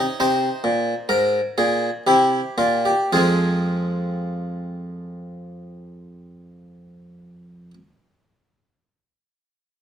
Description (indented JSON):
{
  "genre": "classical, baroque-style 3-part fugue for harpsichord",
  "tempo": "54-70 BPM",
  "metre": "3/4",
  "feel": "straight",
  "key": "F minor",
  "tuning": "A4 = 441 Hz",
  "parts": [
    { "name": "harpsichord", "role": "solo", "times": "0.0-7.7 s", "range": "F2 to Db5", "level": "-19 LUFS", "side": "equal", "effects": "none" }
  ],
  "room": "moderate stone room reverb, RT60 1.1 s",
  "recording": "none",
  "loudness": "-18 LUFS",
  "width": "side -9 dB against mid",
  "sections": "0.0-3.1 A section; 3.1-6.4 B section",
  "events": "slowing down 0.0-3.1",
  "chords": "0.2 Abadd9; 2.1 C7; 3.1 Fm",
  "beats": "| 0.19 1.09 2.07 | 3.13 4.23 5.34"
}